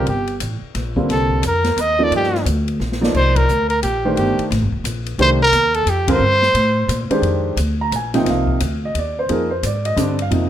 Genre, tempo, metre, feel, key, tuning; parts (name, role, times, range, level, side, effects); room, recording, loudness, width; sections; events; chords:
modal jazz; 176 BPM; 3/4; swing 63% on 8ths; C dorian, F dorian from 7.2 s; A4 = 440 Hz
warm trumpet; melody; 0.0-7.1 s; G4 to Eb5; -17 LUFS; right 1 dB
warm grand piano; accompaniment; 0.0-10.5 s; C3 to Bb5; -20 LUFS; right 1 dB
upright bass; bass; 0.0-10.5 s; Eb1 to Bb2; -20 LUFS; equal
open jazz drum kit; drums; 0.1-10.4 s; crash cymbal, hi-hat, kick drum, ride cymbal, snare drum; -27 LUFS; left 2 dB
moderate club reverb, RT60 0.9 s; -15 LUFS; side -11 dB against mid
0.0-7.2 A section; 7.2-10.5 B section
drum fill 2.8-3.1; band accent 3.3, 6.0
0.0 Cm9; 7.2 Fm69